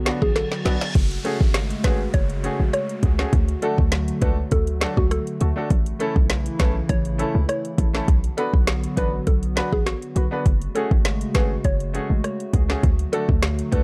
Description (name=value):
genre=dancehall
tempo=101 BPM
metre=4/4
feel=straight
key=F# minor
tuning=A4 = 440 Hz
part: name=hollow soft pad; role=sustained chords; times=0.0-13.8 s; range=C#3 to F#4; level=-32 LUFS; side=equal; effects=chorus, sidechain pumping
part: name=short 808-style bass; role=bass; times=0.0-13.8 s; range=F#1 to D2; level=-25 LUFS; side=equal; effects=none
part: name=reverse cymbal and downlifter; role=sound effects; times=0.2-5.7 s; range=none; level=-40 LUFS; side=equal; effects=none
part: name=clear grand piano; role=accompaniment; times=0.1-13.8 s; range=A3 to B4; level=-31 LUFS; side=equal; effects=sidechain pumping
part: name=afro-pop drum kit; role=drums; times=0.1-13.8 s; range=crash cymbal, hi-hat, kick drum, rim click, snare drum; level=-24 LUFS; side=equal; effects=none
part: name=mallet-like synth pluck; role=melody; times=0.2-13.8 s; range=F#4 to C#5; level=-31 LUFS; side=equal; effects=chorus, phaser, digital delay
room=little or no reverb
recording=dark, warm production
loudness=-22 LUFS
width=mono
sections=1.0-13.8 A section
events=reverse cymbal 0.2-1.0; drum fill 0.4-1.0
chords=0.0 Bm; 1.0 F#madd9; 3.3 D; 5.7 A; 8.1 Bm; 10.5 F#madd9; 12.8 D